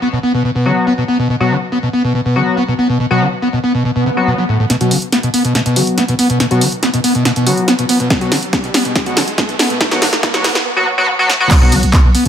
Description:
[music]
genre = driving peak-time techno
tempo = 141 BPM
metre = 4/4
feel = straight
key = B minor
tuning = A4 = 439 Hz
[part]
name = screaming distorted acid line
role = riff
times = 0.0-12.3 s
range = A2 to B3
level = -15 LUFS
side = equal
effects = distortion, wide subtle chorus, sidechain pumping, ping-pong delay
[part]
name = sync-sweep polysynth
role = stabs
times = 0.7-11.7 s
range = F#3 to F#4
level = -17 LUFS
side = left 2 dB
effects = chorus, sidechain pumping, ping-pong delay
[part]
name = swell and riser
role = sound effects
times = 4.0-10.7 s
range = none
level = -24 LUFS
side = right 2 dB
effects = none
[part]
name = punchy analog drum machine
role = drums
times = 4.7-12.3 s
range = crash cymbal, handclaps, hi-hat, snare drum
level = -16 LUFS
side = right 1 dB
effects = none
[part]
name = electronic kick drum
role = drums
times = 8.1-12.0 s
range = none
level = -13 LUFS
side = equal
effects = none
[part]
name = growling 808-style bass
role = bass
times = 11.6-12.3 s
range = B1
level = -16 LUFS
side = equal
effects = overdrive, sidechain pumping, low-pass filter
[sound]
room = moderate stone room reverb, RT60 1.1 s, digital ambience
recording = high-pass filter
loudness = -11 LUFS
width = side -9 dB against mid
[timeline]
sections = 0.0-4.7 A section; 4.7-11.5 B section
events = swell 4.0-4.7; build-up 4.7-11.5; drum fill 4.7-10.7, 11.3; riser 4.7-10.7; filter sweep on acid bass 4.7-11.5; filter sweep on analog polysynth 4.7-11.5; filter sweep 4.7-11.5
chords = 0.0 B5

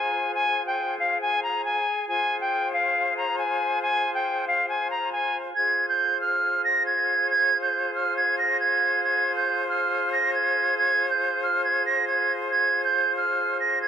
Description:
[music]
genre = hip hop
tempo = 138 BPM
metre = 4/4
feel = half-time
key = F minor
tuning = A4 = 442 Hz
[part]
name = bright reedy silver concert flute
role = melody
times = 0.0-13.9 s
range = F5 to Bb6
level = -22 LUFS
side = right 1 dB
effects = low-pass filter, tape echo
[part]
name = bright flute section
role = sustained chords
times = 0.0-13.9 s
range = F4 to C5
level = -29 LUFS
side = left 2 dB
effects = none
[sound]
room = moderate spring reverb, RT60 2.1 s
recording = echo-heavy mix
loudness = -21 LUFS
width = side -8 dB against mid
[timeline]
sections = 0.0-5.6 A section; 5.6-13.9 B section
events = none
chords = 0.0 Fm

